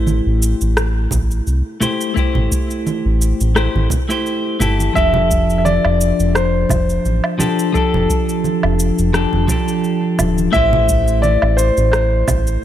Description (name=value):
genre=sunset chillout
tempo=86 BPM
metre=4/4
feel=swing 54% on 16ths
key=unclear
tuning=A4 = 440 Hz
part: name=clean electric guitar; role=accompaniment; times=0.0-12.6 s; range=F3 to C5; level=-19 LUFS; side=moving between left 6 dB and right 4 dB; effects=auto-pan, ping-pong delay
part: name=round analog bass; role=bass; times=0.0-12.6 s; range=D1 to C2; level=-17 LUFS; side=equal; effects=none
part: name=electronic cabasa, rim click and woodblock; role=drums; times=0.1-12.6 s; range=none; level=-23 LUFS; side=right 1 dB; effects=overdrive, studio reverb
part: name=congas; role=percussion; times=0.1-12.4 s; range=none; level=-24 LUFS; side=right 4 dB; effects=none
part: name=electronic kick drum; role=drums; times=1.1-12.4 s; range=none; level=-21 LUFS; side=equal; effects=studio reverb
part: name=warm concert grand piano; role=melody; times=5.0-12.6 s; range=A4 to E5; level=-18 LUFS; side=left 1 dB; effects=ping-pong delay
room=light reverb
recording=none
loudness=-14 LUFS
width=side -11 dB against mid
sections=0.0-12.6 A section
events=none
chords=0.0 Am7; 5.0 F69; 10.5 Am7